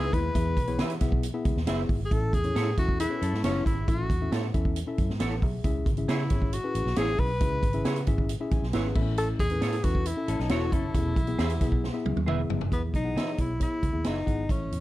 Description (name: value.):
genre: uptempo 1960s-style soul.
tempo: 136 BPM.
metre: 4/4.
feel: straight.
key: E major.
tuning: A4 = 439 Hz.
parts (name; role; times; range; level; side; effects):
mellow tenor saxophone; melody; 0.0-14.8 s; B3 to B4; -31 LUFS; left 1 dB; none.
tine electric piano; accompaniment; 0.0-14.8 s; A2 to A5; -33 LUFS; left 3 dB; overdrive.
electric guitar through a small old amp; riff; 0.0-3.9, 10.3-11.1 s; G#3 to C#5; -35 LUFS; left 7 dB; ensemble chorus.
semi-hollow electric guitar; stabs; 0.0-14.2 s; E4 to E5; -35 LUFS; right 6 dB; ensemble chorus.
vintage muted fingered electric bass; bass; 0.0-14.8 s; E1 to E3; -30 LUFS; equal; none.
swinging big-band drum kit; drums; 0.1-14.8 s; crash cymbal, hi-hat, kick drum, snare drum, toms; -28 LUFS; equal; none.
room: small room reverb.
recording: dark, warm production.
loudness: -24 LUFS.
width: side -16 dB against mid.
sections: 0.0-12.7 A section; 12.7-14.8 B section.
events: tine electric piano fill 8.3-9.2; drum fill 11.8-12.7.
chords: 0.0 E; 2.1 A; 5.6 C#m; 9.0 A; 10.9 E.